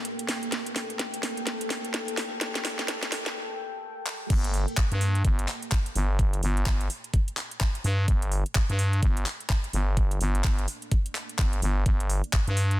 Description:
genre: bass house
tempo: 127 BPM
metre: 4/4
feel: swing 60% on 16ths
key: G minor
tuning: A4 = 440 Hz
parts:
  - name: deep dark ambient pad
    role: sustained chords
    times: 0.0-12.8 s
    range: Bb3 to G5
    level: -37 LUFS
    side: equal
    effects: chorus, built-in reverb, sidechain pumping
  - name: garage drum kit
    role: drums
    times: 0.0-12.8 s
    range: crash cymbal, handclaps, hi-hat, snare drum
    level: -31 LUFS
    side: equal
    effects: soft clipping on snare, small room ambience
  - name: growling FM bass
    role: bass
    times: 4.3-12.8 s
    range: G1 to G2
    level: -25 LUFS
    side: equal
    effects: sidechain pumping
  - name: electronic kick drum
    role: drums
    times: 4.3-12.4 s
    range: none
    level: -24 LUFS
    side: equal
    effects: small room ambience
room: little or no reverb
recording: dense, heavily limited modern master, high-pass filter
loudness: -25 LUFS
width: side -15 dB against mid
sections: 0.0-4.3 A section; 4.3-12.8 B section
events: build-up 0.0-4.3; drum fill 0.0-3.4, 4.1; break 3.4-4.3; drop 4.3-12.8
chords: 0.0 Gmadd9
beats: 0.05 | 0.52 0.99 1.47 1.94 | 2.41 2.88 3.36 3.83 | 4.30 4.77 5.25 5.72 | 6.19 6.66 7.14 7.61 | 8.08 8.55 9.03 9.50 | 9.97 10.44 10.91 11.39 | 11.86 12.33

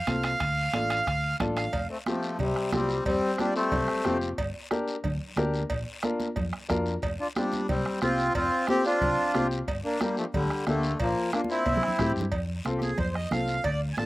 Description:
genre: latin, cumbia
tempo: 181 BPM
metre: 4/4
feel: straight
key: F major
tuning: A4 = 440 Hz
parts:
  - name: accordion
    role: melody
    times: 0.0-4.2, 7.2-14.1 s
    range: C3 to A5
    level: -27 LUFS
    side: equal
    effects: none
  - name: warm upright piano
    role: accompaniment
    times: 0.1-14.1 s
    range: Bb3 to Bb4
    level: -31 LUFS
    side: left 2 dB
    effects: none
  - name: hollow-body short-scale fingered electric bass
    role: bass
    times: 0.1-14.1 s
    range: F1 to A2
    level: -32 LUFS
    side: equal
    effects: none
  - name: bombo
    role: percussion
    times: 0.1-14.1 s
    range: none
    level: -34 LUFS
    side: equal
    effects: none
  - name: congas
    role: percussion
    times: 0.1-14.1 s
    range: none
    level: -35 LUFS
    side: right 3 dB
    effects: none
  - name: guiro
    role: percussion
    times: 0.1-14.1 s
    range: none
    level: -44 LUFS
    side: left 3 dB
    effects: none
  - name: timbales and cowbell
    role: percussion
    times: 0.1-13.8 s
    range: none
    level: -36 LUFS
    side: right 3 dB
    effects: none
  - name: growling trombone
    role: second line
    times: 1.9-4.2, 7.2-12.1 s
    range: C3 to D4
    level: -35 LUFS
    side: left 2 dB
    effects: slapback echo
room: little or no reverb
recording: recorded outdoors, with no room sound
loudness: -25 LUFS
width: side -18 dB against mid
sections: 0.0-1.7 A section; 1.7-12.3 B section; 12.3-14.1 C section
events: drum fill 11.3-12.3; accordion solo 12.3-14.1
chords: 0.4 Dm; 1.7 Fsus2; 4.4 Gm; 5.7 Bb; 7.0 Fsus2; 9.7 Gm; 11.0 Bb; 11.7 C; 12.3 F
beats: 0.07 | 0.41 0.74 1.07 1.40 | 1.73 2.06 2.39 2.72 | 3.06 3.39 3.72 4.05 | 4.38 4.71 5.04 5.37 | 5.70 6.04 6.37 6.70 | 7.03 7.36 7.69 8.02 | 8.35 8.68 9.01 9.35 | 9.68 10.01 10.34 10.67 | 11.00 11.33 11.66 11.99 | 12.32 12.65 12.99 13.32 | 13.65 13.98

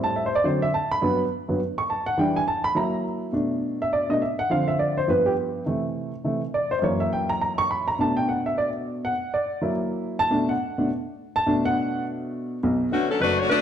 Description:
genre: jazz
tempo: 207 BPM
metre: 4/4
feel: swing 61% on 8ths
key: B minor from 3.3 s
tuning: A4 = 440 Hz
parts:
  - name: warm baby grand piano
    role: accompaniment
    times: 0.0-13.6 s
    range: F#1 to C#6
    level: -22 LUFS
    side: equal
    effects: none
  - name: clear saxophone section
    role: melody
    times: 12.9-13.6 s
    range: D3 to C#5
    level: -20 LUFS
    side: left 3 dB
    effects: none
room: wet large studio reverb, RT60 1.3 s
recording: dark, warm production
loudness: -22 LUFS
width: side -9 dB against mid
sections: 0.0-3.3 A section; 3.3-12.6 A section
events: grand piano solo 0.0-3.3, 3.3-12.6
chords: 0.4 D7; 1.0 Gmaj7; 2.2 Em7; 2.8 F#7; 3.3 Bm7; 4.5 Dm7; 5.1 G7; 5.7 C6; 6.8 F#7; 8.0 Bm7; 9.1 F#7b13; 10.3 Bm7; 12.6 Bm9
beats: 0.15 0.44 0.73 | 1.02 1.30 1.59 1.89 | 2.17 2.46 2.75 3.04 | 3.33 3.62 3.92 4.21 | 4.50 4.79 5.08 5.37 | 5.66 5.95 6.24 6.53 | 6.82 7.11 7.40 7.69 | 7.98 8.27 8.56 8.85 | 9.14 9.43 9.72 10.01 | 10.30 10.59 10.88 11.17 | 11.46 11.75 12.04 12.33 | 12.62 12.91 13.20 13.49

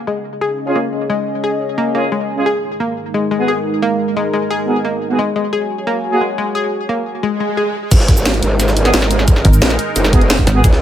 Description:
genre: dark technical drum and bass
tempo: 176 BPM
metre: 4/4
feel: straight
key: unclear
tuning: A4 = 440 Hz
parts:
  - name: sweeping resonant pad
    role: sustained chords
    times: 0.2-10.8 s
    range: G#3 to G#5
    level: -21 LUFS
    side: equal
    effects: chorus, sidechain pumping
  - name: analog pluck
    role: arpeggios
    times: 0.1-7.6 s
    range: G#3 to G#4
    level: -19 LUFS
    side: left 2 dB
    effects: chorus, sidechain pumping, tape echo
  - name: dark brass ensemble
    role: stabs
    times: 0.7-6.2, 8.9-10.6 s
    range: A#3 to G#4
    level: -21 LUFS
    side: right 1 dB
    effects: tape echo
  - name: swell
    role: sound effects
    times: 7.3-7.9 s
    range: none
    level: -22 LUFS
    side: right 4 dB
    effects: none
  - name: growl bass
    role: bass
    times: 7.9-10.8 s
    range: F#1 to C#2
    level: -16 LUFS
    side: equal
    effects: distortion, chorus, overdrive, sidechain pumping
  - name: drum and bass drum kit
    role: drums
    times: 7.9-10.7 s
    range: cabasa, crash cymbal, hi-hat, snare drum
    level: -18 LUFS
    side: equal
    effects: studio reverb
  - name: electronic kick drum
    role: drums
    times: 7.9-10.7 s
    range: none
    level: -11 LUFS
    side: equal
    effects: studio reverb
  - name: jungle sampler-style drum kit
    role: drums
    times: 7.9-10.8 s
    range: hi-hat, snare drum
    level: -25 LUFS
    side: right 1 dB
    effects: none
  - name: pulsing pluck wobble bass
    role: bass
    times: 9.4-10.6 s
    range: G#1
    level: -12 LUFS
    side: equal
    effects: chorus
room: light reverb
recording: none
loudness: -13 LUFS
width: side -11 dB against mid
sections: 0.0-7.9 A section; 7.9-10.8 B section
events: swell 7.3-7.9; drop 7.9-10.8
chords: 0.0 C#5; 2.5 G#5; 5.2 F#sus2; 7.9 G#7(no3)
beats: 0.07 0.41 0.76 | 1.10 1.44 1.78 2.12 | 2.46 2.80 3.14 3.48 | 3.82 4.16 4.50 4.85 | 5.19 5.53 5.87 6.21 | 6.55 6.89 7.23 7.57 | 7.91 8.26 8.60 8.94 | 9.28 9.62 9.96 10.30 | 10.64

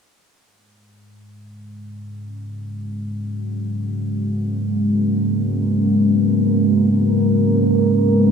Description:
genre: ambient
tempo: free time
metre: none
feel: none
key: G# minor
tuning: A4 = 440 Hz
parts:
  - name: deep dark ambient pad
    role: sustained chords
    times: 2.3-8.3 s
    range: G#3 to B4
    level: -17 LUFS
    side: equal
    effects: chorus, built-in reverb
room: wet echo chamber reverb, RT60 2.0 s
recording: none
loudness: -16 LUFS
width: side -6 dB against mid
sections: 0.4-8.3 A section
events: filter sweep on ambient pad 0.4-8.3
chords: 0.4 G#madd9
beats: free time

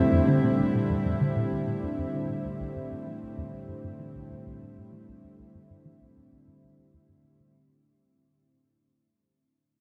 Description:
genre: ambient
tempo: 97 BPM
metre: 4/4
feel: straight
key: unclear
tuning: A4 = 441 Hz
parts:
  - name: lush unison pad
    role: sustained chords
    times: 0.0-7.6 s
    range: A2 to E4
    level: -30 LUFS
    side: equal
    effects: chorus, shimmer reverb
  - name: tight sequenced synth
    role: riff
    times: 0.0-7.4 s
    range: C2 to G3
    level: -32 LUFS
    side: equal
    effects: chorus, delay
room: wet huge ambient reverb, RT60 7.7 s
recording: dark, warm production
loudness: -28 LUFS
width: mono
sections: 0.0-7.6 A section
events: fade-out 0.0-7.6; filter sweep on synth arpeggio sound 0.0-7.6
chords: 0.0 Bbadd9; 2.6 C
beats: | 0.13 0.75 1.37 1.99 | 2.60 3.22 3.84 4.46 | 5.08 5.70 6.32 6.93

